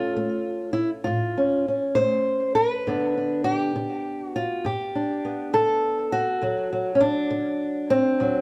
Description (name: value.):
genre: acoustic country blues, solo or duo.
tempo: 67 BPM (dotted quarters).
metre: 12/8.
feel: straight.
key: unclear.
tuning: A4 = 440 Hz.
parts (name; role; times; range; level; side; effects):
fingerpicked old ladder-braced acoustic guitar; solo; 0.0-8.4 s; D2 to C5; -24 LUFS; equal; none.
room: moderate small room reverb, RT60 0.5 s.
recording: heard from further back in the room, faint mains hum.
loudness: -24 LUFS.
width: mono.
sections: 0.0-8.4 A section.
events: none.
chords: 0.0 A; 2.9 G; 6.4 D.